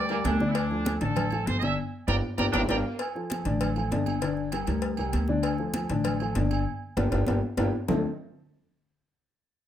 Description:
latin, salsa; 196 BPM; 4/4; straight; D minor; A4 = 439 Hz
bright trumpet section; melody; 0.0-2.8 s; A4 to E6; -31 LUFS; right 3 dB
dark concert grand piano; accompaniment; 0.0-8.0 s; D3 to D5; -30 LUFS; left 4 dB
upright bass; bass; 0.0-8.0 s; G1 to D2; -29 LUFS; right 1 dB
mellow saxophone section; second line; 0.1-3.0 s; Bb3 to E4; -34 LUFS; right 1 dB
agogo bells and timbales; percussion; 0.1-8.0 s; -35 LUFS; right 6 dB
congas; percussion; 0.1-8.0 s; -33 LUFS; equal
cowbell and bongos; percussion; 0.2-8.0 s; -35 LUFS; left 6 dB
light reverb; close, detailed microphones; -25 LUFS; side -10 dB against mid
0.0-3.0 A section; 3.0-7.9 B section; 7.9-9.1 C section
band accent 1.8-3.0, 6.7-7.9; drum fill 2.4-3.0, 6.7-7.9
0.0 Gm; 0.6 Dm7; 1.8 Gm; 3.0 Dm; 4.2 Gm; 5.4 Dm; 6.7 Gm; 7.9 Dm7

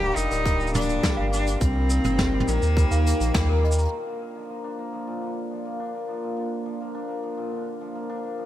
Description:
folktronica; 104 BPM; 4/4; straight; Bb major; A4 = 440 Hz
clear cello; melody; 0.0-3.6 s; Bb3 to G4; -27 LUFS; left 1 dB; ping-pong delay
celesta; second line; 0.0-3.9 s; Bb4 to Bb5; -34 LUFS; right 1 dB; ping-pong delay
warbly tape-like pad; sustained chords; 0.0-8.5 s; Bb3 to Bb5; -34 LUFS; right 2 dB; chorus, built-in reverb
cimbalom; arpeggios; 0.0-8.5 s; Bb2 to D4; -31 LUFS; left 2 dB; low-pass filter
warm sub bass; bass; 0.0-3.9 s; D1 to Eb2; -23 LUFS; equal
vintage brush drum kit; drums; 0.2-3.9 s; hi-hat, shaker, snare drum, toms; -29 LUFS; equal; low-pass filter on hats, low-pass filter on toms, low-pass filter on snare, low-pass filter on perc, low-pass filter on room
electronic kick drum; drums; 0.5-3.5 s; -25 LUFS; equal
little or no reverb; -22 LUFS; side -13 dB against mid
0.0-3.9 A section; 3.9-8.5 B section
band accent 3.3; filter sweep on hammered dulcimer 3.9-8.5
0.0 Gm; 1.6 Cm7; 2.8 Eb; 3.9 Bb

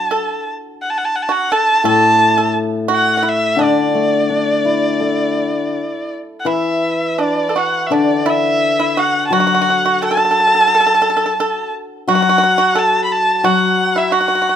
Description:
chinese traditional, Chinese chamber ensemble; 86 BPM; 4/4; rubato; D gong mode; A4 = 440 Hz
rich erhu; melody; 0.0-14.6 s; D5 to B5; -15 LUFS; equal
pipa; second line; 0.0-14.6 s; D4 to A4; -19 LUFS; right 4 dB
hammered dulcimer; accompaniment; 0.0-14.6 s; A2 to A4; -19 LUFS; left 5 dB
light reverb; close, detailed microphones; -13 LUFS; side -9 dB against mid
0.0-14.6 A section

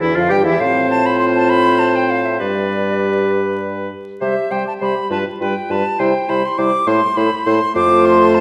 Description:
quick classical-period movement for wind quintet; 67 BPM (dotted quarters); 6/8; straight; A4 = 441 Hz
silver concert flute; melody; 0.0-8.4 s; D5 to D6; -21 LUFS; equal
warm oboe; second line; 0.0-8.4 s; E4 to C5; -25 LUFS; equal
clear French horn; accompaniment; 0.0-8.4 s; E3 to C4; -24 LUFS; equal
dark clarinet; accompaniment; 0.0-8.4 s; E4 to G4; -23 LUFS; equal
mellow bassoon; bass; 0.0-8.4 s; E2 to C3; -22 LUFS; equal
wet recital hall reverb, RT60 1.7 s; vinyl crackle; -16 LUFS; mono
0.0-8.4 A section
0.0 G5; 0.6 F/A; 2.4 G; 4.2 C5; 5.1 G7; 6.0 C; 6.9 Am; 7.8 F

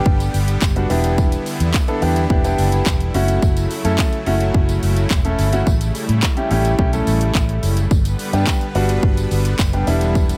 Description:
dance-pop; 107 BPM; 4/4; straight; A4 = 440 Hz
warm baby grand piano; accompaniment; 0.0-10.4 s; G3 to A4; -24 LUFS; equal; sidechain pumping
supersaw pad; sustained chords; 0.0-10.4 s; C#3 to B4; -29 LUFS; equal; sidechain pumping
downlifter; sound effects; 0.0-1.2 s; barely audible
vintage muted fingered electric bass; bass; 0.1-10.3 s; E1 to A2; -21 LUFS; equal; sidechain pumping
house drum kit; drums; 0.1-10.4 s; handclaps, hi-hat, kick drum; -22 LUFS; equal; overdrive
tambourine; percussion; 0.2-10.4 s; -40 LUFS; equal
digital ambience; -18 LUFS; mono
0.0-10.4 A section
0.0 G; 0.9 Em7; 3.1 F#m7; 5.7 A7; 7.9 G; 9.9 Em7

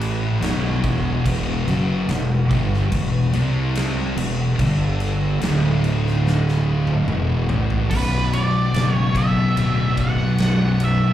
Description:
stoner and doom metal; 72 BPM; 4/4; straight; B minor; A4 = 440 Hz
percussive tonewheel organ; sustained chords; 0.0-11.1 s; C3 to D5; -34 LUFS; equal; slow rotary speaker, overdrive
thick fuzz guitar; riff; 0.0-11.1 s; B1 to C4; -23 LUFS; left 5 dB; distortion, slapback echo
thick fuzz guitar; riff; 0.0-11.1 s; B1 to C4; -23 LUFS; right 4 dB; distortion, slapback echo
fuzz fingered electric bass; bass; 0.0-11.0 s; B0 to C2; -24 LUFS; equal; overdrive
big rock drum kit; drums; 0.0-11.0 s; crash cymbal, kick drum, ride cymbal, snare drum, toms; -27 LUFS; equal
octave-fuzz lead guitar; melody; 7.9-11.1 s; B4 to F#5; -24 LUFS; right 3 dB; distortion, slapback echo
light reverb; live gig heard through the venue's PA, club reverb; -17 LUFS; side -12 dB against mid
0.0-7.9 A section; 7.9-11.1 B section
drum fill 6.2-7.9
0.4 B5; 1.3 E5; 3.3 C5; 4.2 E5; 4.6 G5; 5.4 D5; 7.1 E5; 7.9 Bm

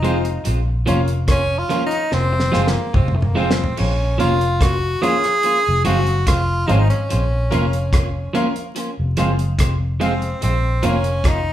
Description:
roots reggae; 72 BPM; 4/4; straight; Bb minor; A4 = 440 Hz
bright tenor saxophone; melody; 0.0-11.5 s; A3 to Ab4; -21 LUFS; equal
electric guitar at the edge of break-up; accompaniment; 0.0-11.0 s; F3 to F4; -23 LUFS; right 2 dB; tape echo
bright grand piano; stabs; 0.0-11.0 s; F4 to F5; -28 LUFS; left 3 dB
vintage muted fingered electric bass; bass; 0.0-11.5 s; F1 to Bb1; -20 LUFS; equal
damped 70s drum kit; drums; 0.0-11.4 s; crash cymbal, hi-hat, kick drum, rim click, snare drum, toms; -21 LUFS; equal
wet large studio reverb, RT60 0.8 s; band playing live in one room, vinyl crackle; -16 LUFS; side -12 dB against mid
0.0-3.8 A section; 3.8-11.5 B section
tenor saxophone solo 0.0-3.8; drum fill 2.1-3.8
0.5 Bbm; 2.1 Fm; 3.8 Bbm; 5.4 Fm; 7.1 Bbm; 8.8 Fm; 10.4 Bbm

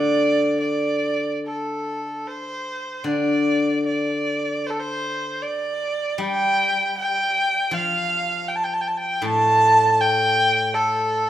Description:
chinese traditional, Chinese chamber ensemble; 72-81 BPM; 4/4; rubato; D yu mode; A4 = 440 Hz
rich erhu; melody; 0.0-11.3 s; A4 to A5; -20 LUFS; right 1 dB
steel-string zither; accompaniment; 0.0-11.3 s; A2 to G3; -25 LUFS; left 2 dB
moderate recital hall reverb, RT60 1.4 s; minimal, uncompressed stereo recording; -19 LUFS; side -12 dB against mid
0.0-2.3 A section; 2.3-11.3 B section

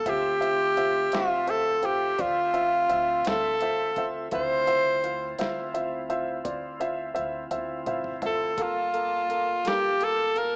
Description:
slow blues; 56 BPM (dotted quarters); 12/8; straight; D minor; A4 = 442 Hz
growling tenor saxophone; melody; 0.0-10.6 s; F4 to C5; -24 LUFS; equal
clear upright piano; accompaniment; 0.1-10.6 s; F4 to G5; -31 LUFS; equal
bright tonewheel organ; sustained chords; 0.1-10.6 s; Bb3 to A5; -38 LUFS; equal; slow rotary speaker
upright bass; bass; 0.1-10.6 s; G1 to D2; -47 LUFS; equal
dusty soul sampler-style drum kit; drums; 0.1-10.5 s; hi-hat, kick drum, snare drum, toms; -36 LUFS; equal; overdrive
moderate lush hall reverb, RT60 2.2 s; rough home demo mix, small speaker sound; -23 LUFS; side -36 dB against mid
0.0-10.6 A section
drum fill 7.5-8.6
0.1 Dm9; 8.6 Gm9

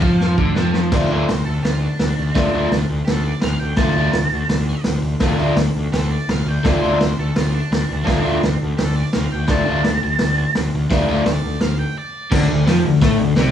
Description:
garage rock duo or trio; 168 BPM; 4/4; straight; D minor; A4 = 440 Hz
octave-fuzz lead guitar; melody; 0.0-12.3 s; D4 to A5; -26 LUFS; right 2 dB; distortion
crunchy overdriven guitar; riff; 0.0-13.5 s; C3 to F4; -18 LUFS; left 1 dB
fuzz picked electric bass; bass; 0.0-13.5 s; C2 to A2; -20 LUFS; left 1 dB; overdrive, tube saturation
vintage drum kit; drums; 0.0-13.4 s; crash cymbal, hi-hat, kick drum, snare drum; -21 LUFS; equal
moderate large studio reverb, RT60 1.1 s; band playing live in one room, small room ambience; -16 LUFS; side -9 dB against mid
0.9-12.3 A section; 12.3-13.5 B section
drum fill 0.2-0.9; break 12.0-12.3
0.0 Dm

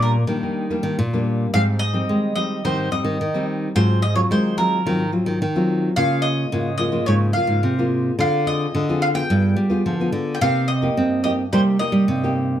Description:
samba and choro; 108 BPM; 4/4; straight; Ab major; A4 = 440 Hz
mandolin; melody; 0.0-12.3 s; Bb4 to G5; -23 LUFS; right 1 dB; plate reverb
nylon-string guitar; accompaniment; 0.0-12.6 s; G2 to Ab4; -24 LUFS; left 2 dB
nylon-string guitar; bass; 0.0-12.6 s; G2 to C4; -20 LUFS; right 1 dB
light reverb; dark, warm production; -18 LUFS; side -10 dB against mid
0.0-1.5 A section; 1.5-12.6 B section
mandolin solo 0.0-1.5
0.0 Ebmaj7; 1.5 Abmaj7; 3.8 Ab13; 6.0 Db6; 8.2 Dm7b5; 9.3 G7b9; 10.4 Cm7

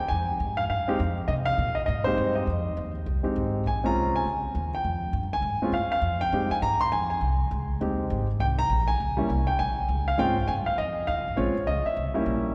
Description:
jazz piano trio; 202 BPM; 4/4; swing 62% on 8ths; F minor; A4 = 437 Hz
warm grand piano; melody; 0.0-12.5 s; G3 to C6; -28 LUFS; equal
upright bass; bass; 0.1-12.5 s; Ab1 to C3; -31 LUFS; equal
wet church reverb, RT60 3.0 s; recorded in a church or concert hall; -26 LUFS; mono
0.0-12.5 A section
0.0 Fm7; 3.7 Bbm7; 6.0 Fm7; 8.4 C7(no3); 9.6 Bbm7; 10.8 Fm7; 11.4 Bbm7; 12.0 C7b9

